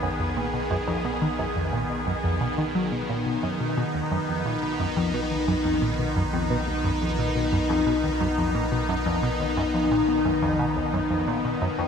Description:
ambient, sequencer-driven space music; 88 BPM; 4/4; straight; B lydian; A4 = 435 Hz
evolving wavetable pad; sustained chords; 0.0-11.9 s; D#3 to G#4; -25 LUFS; left 2 dB; phaser, built-in reverb
tight sequenced synth; riff; 0.0-11.9 s; D#2 to F#3; -27 LUFS; equal; chorus, ping-pong delay
round analog bass; bass; 0.0-11.9 s; B1; -34 LUFS; right 1 dB
wet shimmer reverb, RT60 8.5 s; -23 LUFS; side -7 dB against mid
0.0-11.9 A section
0.0 B

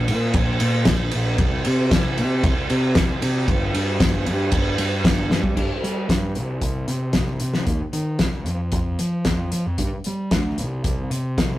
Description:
indie rock; 114 BPM; 4/4; straight; G minor; A4 = 436 Hz
fuzz picked electric bass; bass; 0.0-11.6 s; G1 to G3; -23 LUFS; equal; overdrive
loose indie drum kit; drums; 0.1-11.5 s; crash cymbal, hi-hat, kick drum, ride cymbal, snare drum; -21 LUFS; equal
wet studio ambience, RT60 0.5 s; rough rehearsal-room recording, tube saturation; -19 LUFS; side -15 dB against mid
0.0-5.6 A section; 5.6-11.6 B section
drum fill 5.3

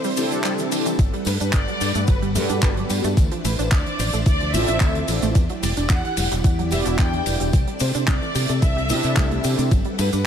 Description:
nu-disco, nu disco; 110 BPM; 4/4; straight; G major; A4 = 441 Hz
warm symphonic violin section; melody; 0.0-10.3 s; B4 to G5; -28 LUFS; left 1 dB; tape echo
string machine, full ensemble; sustained chords; 0.0-10.3 s; G3 to F#5; -29 LUFS; equal; ensemble chorus, sidechain pumping
wide unison pluck; arpeggios; 0.0-10.2 s; E3 to G4; -29 LUFS; right 4 dB; sidechain pumping, tape echo
damped 70s drum kit; drums; 0.0-10.2 s; cabasa, handclaps, hi-hat, ride cymbal; -27 LUFS; right 1 dB
mellow synth brass; accompaniment; 0.2-9.7 s; B3 to D5; -26 LUFS; equal; chorus, sidechain pumping, dub echo
tambourine; percussion; 0.2-10.2 s; -38 LUFS; left 4 dB
fingered electric bass; bass; 1.0-10.2 s; E1 to C3; -24 LUFS; equal
electronic kick drum; drums; 1.0-9.8 s; -19 LUFS; equal; overdrive
small room ambience; -18 LUFS; side -8 dB against mid
0.0-10.3 A section
break 0.0-1.0
0.0 C69; 1.0 Gmaj9; 3.2 Dm9; 5.4 Em9; 7.5 C69; 9.7 Gmaj9

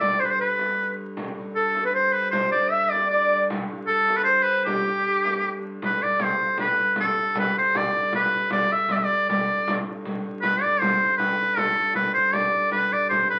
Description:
medieval dance; 156 BPM; 3/4; straight; G major; A4 = 441 Hz
bright shawm; melody; 0.0-13.4 s; G4 to E5; -23 LUFS; equal
mellow alto recorder; second line; 0.0-5.6 s; G4 to E5; -30 LUFS; equal
dark hurdy-gurdy; drone; 0.0-13.4 s; G2 to D3; -37 LUFS; equal
frame drum; percussion; 0.0-13.4 s; -33 LUFS; equal
wet club reverb, RT60 0.6 s; very old 78 rpm record, vinyl crackle; -23 LUFS; mono
0.0-5.8 A section; 5.8-13.4 B section

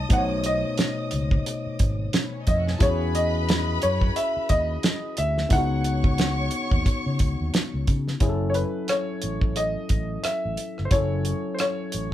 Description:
lush 1970s-style soul; 89 BPM; 4/4; swing 58% on 16ths; F# dorian; A4 = 440 Hz
clear concert grand piano; melody; 0.0-12.1 s; B4 to A5; -28 LUFS; equal
warm studio violin section; second line; 0.0-7.8 s; B3 to D#6; -34 LUFS; left 2 dB
barky tine electric piano; accompaniment; 0.0-12.1 s; B2 to C#5; -30 LUFS; left 3 dB
fingered electric bass; bass; 0.0-12.1 s; F#1 to C#3; -27 LUFS; equal
damped 70s drum kit; drums; 0.1-12.1 s; hi-hat, kick drum, rim click, snare drum; -23 LUFS; right 1 dB
moderate studio ambience, RT60 0.5 s; band playing live in one room; -22 LUFS; side -12 dB against mid
0.0-8.2 A section; 8.2-12.1 B section
0.0 B9; 2.8 E69; 5.5 C#9sus4; 8.2 F#m7

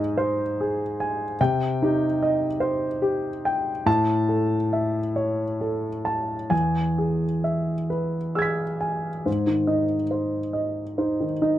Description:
neoclassical minimalist piano; 43-49 BPM (dotted quarters); 6/8; rubato; A4 = 440 Hz
warm grand piano; solo; 0.0-11.6 s; E2 to B6; -22 LUFS; equal
light reverb; dry, close 1970s-style studio recording; -22 LUFS; side -13 dB against mid
0.0-9.3 A section; 9.3-11.6 B section
0.0 Ab; 1.4 Cm; 3.9 A; 6.5 E; 9.3 Ab

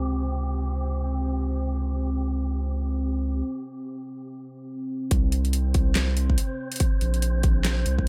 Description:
deep dubstep; 142 BPM; 4/4; swing 60% on 16ths, half-time; A4 = 440 Hz
deep dark ambient pad; sustained chords; 0.0-8.1 s; C4; -35 LUFS; equal; chorus, built-in reverb
saturated sub bass; bass; 0.0-8.1 s; Bb1 to Db2; -27 LUFS; equal
wind-like tuned noise texture; texture; 0.0-8.1 s; G4 to C5; -42 LUFS; equal; built-in reverb
dubstep drum kit; drums; 5.1-8.0 s; handclaps, hi-hat, snare drum; -31 LUFS; equal; overdrive
electronic kick drum; drums; 5.1-8.1 s; -25 LUFS; equal; overdrive
light reverb; -26 LUFS; mono
0.0-5.1 A section; 5.1-8.1 B section
filter sweep on ambient pad 0.0-5.1; break 3.4-5.1; drop 5.1-8.1
0.0 C5; 5.1 N.C.

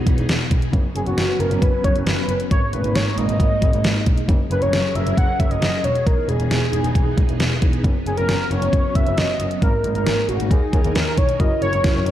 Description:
synth-pop; 135 BPM; 4/4; straight; A4 = 441 Hz
warm velvety synth lead; melody; 0.0-12.1 s; F#4 to F#5; -23 LUFS; equal; chorus, analog delay
phased string machine; sustained chords; 0.0-12.1 s; D#3 to A#4; -26 LUFS; equal; ensemble chorus, phaser
clear double bass; bass; 0.1-12.1 s; E1 to F#2; -23 LUFS; equal
pop drum kit; drums; 0.1-12.1 s; hi-hat, kick drum, snare drum; -20 LUFS; equal; overdrive
tine electric piano; accompaniment; 11.4-12.1 s; E4 to A#4; -26 LUFS; right 1 dB; medium stereo tremolo
light reverb, digital ambience; dark, warm production; -17 LUFS; side -12 dB against mid
0.0-11.4 A section
0.0 Emaj7; 0.7 Bsus2/F#; 2.5 G#sus2; 4.3 F#add9; 5.8 Emaj7; 7.8 Bsus2/F#; 9.6 G#sus2; 10.5 D#sus4; 11.4 F#7

